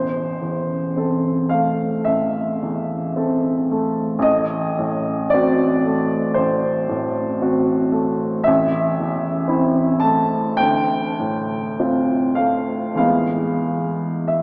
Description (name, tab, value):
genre	classical, romantic nocturne for solo piano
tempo	46-58 BPM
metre	4/4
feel	rubato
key	A minor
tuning	A4 = 440 Hz
part	warm baby grand piano	solo	0.0-14.4 s	A1 to A5	-20 LUFS	equal	none
room	wet cathedral reverb, RT60 4.5 s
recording	small speaker sound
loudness	-20 LUFS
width	mono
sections	0.0-14.4 A section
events	none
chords	0.0 Am; 4.3 Adim7; 8.5 Am; 10.6 Dm7; 13.0 E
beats	0.97 2.07 3.17 | 4.26 5.36 6.40 7.44 | 8.48 9.51 10.62 11.79 | 13.02 14.32